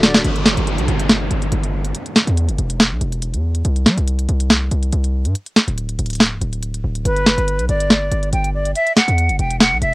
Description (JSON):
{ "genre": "hip hop, trap", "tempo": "141 BPM", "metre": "4/4", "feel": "half-time", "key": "G major", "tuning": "A4 = 439 Hz", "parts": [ { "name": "breathy bright silver concert flute", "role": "melody", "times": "0.0-0.2, 7.1-9.9 s", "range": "B4 to G5", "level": "-20 LUFS", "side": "equal", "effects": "cassette tape, tape echo" }, { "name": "hard-hitting 808-style bass", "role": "bass", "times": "0.0-9.9 s", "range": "C1 to G3", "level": "-19 LUFS", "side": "equal", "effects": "none" }, { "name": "trap drum kit", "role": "drums", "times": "0.0-9.9 s", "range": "hi-hat, snare drum", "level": "-14 LUFS", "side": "equal", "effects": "cassette tape" }, { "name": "downlifter", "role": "sound effects", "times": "0.2-3.6 s", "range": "none", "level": "-25 LUFS", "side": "right 1 dB", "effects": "none" } ], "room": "little or no reverb", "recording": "home recording on cassette", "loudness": "-15 LUFS", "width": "side -21 dB against mid", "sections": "0.2-9.9 A section", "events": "drum fill 0.0; break 0.2-7.1", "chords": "0.2 N.C.; 3.6 C5; 5.3 N.C.; 7.1 G; 8.8 Esus2" }